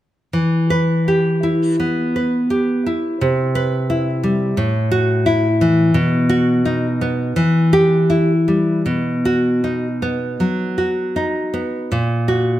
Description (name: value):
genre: romantic piece for solo classical guitar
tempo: 77-89 BPM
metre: 4/4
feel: rubato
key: E minor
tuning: A4 = 441 Hz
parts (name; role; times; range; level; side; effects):
- nylon-string guitar; solo; 0.3-12.6 s; A2 to B4; -15 LUFS; equal; none
room: moderate recital hall reverb, RT60 1.4 s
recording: none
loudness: -15 LUFS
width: side -13 dB against mid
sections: 0.3-12.6 A section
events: none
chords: 0.3 Em; 3.2 Cmaj7; 4.6 F#m7/A; 5.9 B; 7.4 Em; 8.9 B; 11.9 F#/A#